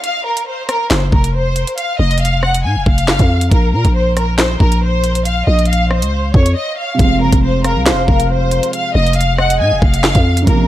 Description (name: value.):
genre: hip hop, drill.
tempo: 138 BPM.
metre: 4/4.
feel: half-time.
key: F phrygian.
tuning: A4 = 441 Hz.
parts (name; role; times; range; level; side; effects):
warm studio violin section; melody; 0.0-10.7 s; Bb4 to Ab5; -18 LUFS; equal; diffuse ambient delay.
drill drum kit; drums; 0.0-10.6 s; handclaps, hi-hat, kick drum, rim click, snare drum; -15 LUFS; equal; none.
growling 808-style bass; bass; 0.9-10.7 s; F1 to Bb2; -15 LUFS; equal; none.
felt-muted upright piano; accompaniment; 6.9-10.7 s; C3 to C4; -20 LUFS; right 4 dB; none.
warm velvety synth lead; second line; 7.6-10.0 s; Eb5 to F5; -21 LUFS; left 1 dB; chorus, diffuse ambient delay.
room: light reverb.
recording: none.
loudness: -12 LUFS.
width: side -13 dB against mid.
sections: 0.0-7.0 A section; 7.0-10.7 B section.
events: break 0.0-0.9, 6.6-7.0.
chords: 0.0 F5; 3.5 Bbsus2; 7.0 Fm.